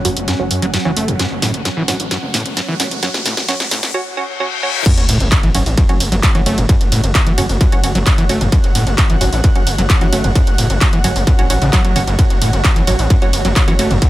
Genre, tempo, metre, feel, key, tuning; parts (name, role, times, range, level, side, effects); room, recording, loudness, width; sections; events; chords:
driving peak-time techno; 131 BPM; 4/4; straight; F# minor; A4 = 440 Hz
overdriven acid bass; riff; 0.0-14.1 s; E2 to A3; -20 LUFS; equal; distortion, sidechain pumping
wavetable chord stab; stabs; 0.0-13.9 s; F#3 to F#4; -24 LUFS; right 2 dB; sidechain pumping, dub echo
gritty driven synth bass; bass; 0.0-14.0 s; F#1 to F#2; -19 LUFS; equal; distortion, tube saturation, sidechain pumping
swarming drone; drone; 0.0-3.9 s; F#3 to C#4; -26 LUFS; right 3 dB; built-in reverb, sidechain pumping
techno drum kit; drums; 0.0-14.1 s; crash cymbal, handclaps, hi-hat, ride cymbal, snare drum; -20 LUFS; right 1 dB; overdrive, high-pass filter on snare, high-pass filter on hats, high-pass filter on cymbals
riser, reverse cymbal and sub drop; sound effects; 1.6-6.7 s; -24 LUFS; left 2 dB
granular cloud pad; texture; 0.0-14.1 s; F#4 to F#5; -26 LUFS; equal; built-in reverb, sidechain pumping
electronic kick drum; drums; 4.9-14.1 s; -14 LUFS; equal; distortion, overdrive
little or no reverb; high-pass filter; -12 LUFS; side -16 dB against mid
0.0-4.9 A section; 4.9-14.1 B section
build-up 0.0-4.9; drum fill 0.0-3.9; filter sweep on acid bass 0.0-4.9; filter sweep on synth stab 0.0-4.9; filter sweep 0.0-4.9; riser 1.6-3.9; reverse cymbal 3.9-4.9; drop 4.9-14.1; impact 4.9-6.7
0.0 F#5